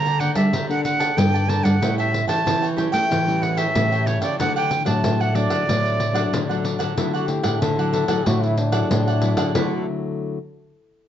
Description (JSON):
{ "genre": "samba and choro", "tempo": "93 BPM", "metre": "4/4", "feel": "straight", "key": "D major", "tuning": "A4 = 440 Hz", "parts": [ { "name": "breathy bright jazz flute", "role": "melody", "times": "0.0-6.6 s", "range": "C#5 to Bb5", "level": "-23 LUFS", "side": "right 2 dB", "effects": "none" }, { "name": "cavaquinho", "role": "accompaniment", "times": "0.0-9.8 s", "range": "D4 to A5", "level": "-30 LUFS", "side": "right 3 dB", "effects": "none" }, { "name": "nylon-string guitar", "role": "accompaniment", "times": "0.0-10.4 s", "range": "A2 to A4", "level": "-26 LUFS", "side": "left 4 dB", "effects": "none" }, { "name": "nylon-string guitar", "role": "bass", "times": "0.0-9.8 s", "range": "G2 to A3", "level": "-22 LUFS", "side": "right 1 dB", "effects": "none" }, { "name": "pandeiro", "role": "percussion", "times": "0.1-9.7 s", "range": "none", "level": "-27 LUFS", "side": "left 2 dB", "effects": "none" }, { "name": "clear trombone", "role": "second line", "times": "7.0-9.9 s", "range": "D4 to A4", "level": "-26 LUFS", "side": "left 3 dB", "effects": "none" } ], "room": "light reverb", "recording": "dark, warm production, nothing above 7.6 kHz", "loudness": "-18 LUFS", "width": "side -10 dB against mid", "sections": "0.0-7.0 A section; 7.0-9.6 B section; 9.6-11.1 C section", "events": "none", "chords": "0.0 Gmadd9; 1.8 A7; 4.4 D; 7.0 Dadd9" }